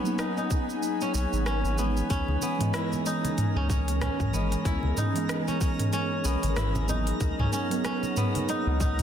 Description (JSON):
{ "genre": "organic downtempo", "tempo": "94 BPM", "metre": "4/4", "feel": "swing 58% on 16ths", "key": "unclear", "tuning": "A4 = 441 Hz", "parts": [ { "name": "muted felt-like synth keys", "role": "accompaniment", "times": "0.0-9.0 s", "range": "E3 to D#5", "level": "-32 LUFS", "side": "right 3 dB", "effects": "chorus, sidechain pumping, tape echo" }, { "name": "ethereal airy pad", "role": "sustained chords", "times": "0.0-9.0 s", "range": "C#4 to G#5", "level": "-34 LUFS", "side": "left 1 dB", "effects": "ensemble chorus, built-in reverb, sidechain pumping" }, { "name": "kora", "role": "arpeggios", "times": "0.0-9.0 s", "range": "B3 to E4", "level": "-32 LUFS", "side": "left 1 dB", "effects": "tape echo" }, { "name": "twinkling granular texture", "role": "texture", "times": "0.0-9.0 s", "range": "A#3 to B5", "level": "-39 LUFS", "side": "left 1 dB", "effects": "built-in reverb" }, { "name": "organic electronic drum kit", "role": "drums", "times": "0.1-9.0 s", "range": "hi-hat, rim click, shaker, toms", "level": "-32 LUFS", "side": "equal", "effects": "soft clipping on snare" }, { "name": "electronic kick drum", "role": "drums", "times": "0.5-9.0 s", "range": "none", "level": "-28 LUFS", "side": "equal", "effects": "none" }, { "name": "warm sub bass", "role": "bass", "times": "1.1-9.0 s", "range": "G#1 to C#2", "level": "-28 LUFS", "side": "equal", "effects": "sidechain pumping" }, { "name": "congas", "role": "percussion", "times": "2.3-9.0 s", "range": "none", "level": "-37 LUFS", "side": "right 2 dB", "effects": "none" } ], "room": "moderate lush hall reverb, RT60 2.7 s", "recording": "dense, heavily limited modern master", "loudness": "-25 LUFS", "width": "side -9 dB against mid", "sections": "0.0-9.0 A section", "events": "none", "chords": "0.0 G#m7" }